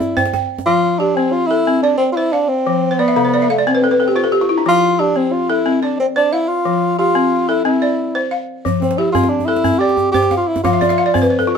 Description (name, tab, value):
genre	west african traditional, West African string and xylophone music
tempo	120 BPM (dotted quarters)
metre	12/8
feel	straight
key	F lydian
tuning	A4 = 440 Hz
part	breathy tenor saxophone	melody	0.0-11.3 s	A3 to G4	-16 LUFS	right 1 dB	none
part	balafon	arpeggios	0.0-11.6 s	C3 to G5	-16 LUFS	left 2 dB	none
part	djembe	percussion	0.0-0.7, 8.7-11.5 s	none	-22 LUFS	right 4 dB	none
room	light reverb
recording	band playing live in one room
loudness	-13 LUFS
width	side -6 dB against mid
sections	0.7-11.6 A section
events	balafon fill 2.9-4.7, 10.7-11.6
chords	0.0 C; 0.7 F; 1.7 C69; 2.7 F5; 3.7 N.C.; 4.7 F; 5.7 Dm9/C; 6.7 F; 7.7 C; 8.7 F; 9.7 C5; 10.7 F5